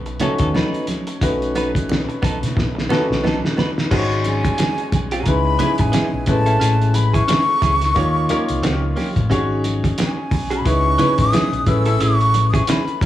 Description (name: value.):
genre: lush 1970s-style soul.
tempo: 89 BPM.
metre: 4/4.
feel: swing 58% on 16ths.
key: unclear.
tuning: A4 = 440 Hz.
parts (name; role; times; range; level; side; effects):
clear grand piano; accompaniment; 0.0-13.1 s; G#3 to C#5; -23 LUFS; left 2 dB; none.
hollow-body short-scale fingered electric bass; bass; 0.0-13.1 s; G#1 to B2; -20 LUFS; left 1 dB; none.
direct-recorded clean electric guitar; riff; 0.1-13.1 s; A#3 to B4; -26 LUFS; right 3 dB; none.
cloth-damped thuddy drum kit; drums; 0.1-13.1 s; crash cymbal, hi-hat, kick drum, snare drum; -22 LUFS; equal; none.
congas; percussion; 0.2-13.1 s; none; -28 LUFS; right 5 dB; none.
breathy jazz flute; melody; 4.3-13.1 s; G#5 to E6; -20 LUFS; left 1 dB; none.
room: light reverb, small room reverb.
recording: small room ambience.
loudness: -16 LUFS.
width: side -13 dB against mid.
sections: 0.0-3.9 A section; 3.9-13.1 B section.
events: drum fill 2.6-3.9.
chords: 0.0 B7; 3.9 G#7sus4; 5.3 C#m7; 6.3 Amaj7; 8.0 D#7; 9.3 G#7sus4; 10.7 C#m7; 11.7 Amaj7.